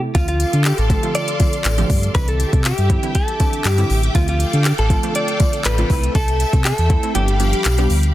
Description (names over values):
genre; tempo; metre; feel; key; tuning
dance-pop; 120 BPM; 4/4; straight; D dorian; A4 = 436 Hz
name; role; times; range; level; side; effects
wide unison pluck; accompaniment; 0.0-8.1 s; D3 to G4; -25 LUFS; right 3 dB; none
direct-recorded clean electric guitar; melody; 0.1-7.9 s; F4 to D5; -23 LUFS; equal; digital delay
sub bass with octave; bass; 0.1-8.1 s; G1 to D3; -18 LUFS; equal; sidechain pumping
smooth R&B drum kit; drums; 0.1-8.1 s; handclaps, hi-hat, kick drum; -19 LUFS; equal; none
tambourine; percussion; 0.1-8.0 s; none; -35 LUFS; left 8 dB; none
string machine, violas; sustained chords; 0.2-8.1 s; G4 to E6; -26 LUFS; left 1 dB; ensemble chorus, sidechain pumping
room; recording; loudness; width
little or no reverb; dense, heavily limited modern master; -15 LUFS; side -14 dB against mid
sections
0.0-8.1 A section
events
kick muted 7.2-8.1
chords
0.1 Dm7; 2.1 Cadd9; 4.2 Dm7; 5.9 Am/C; 7.2 G7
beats
| 0.15 0.65 1.15 1.65 | 2.15 2.65 3.15 3.65 | 4.15 4.65 5.15 5.65 | 6.15 6.65 7.15 7.65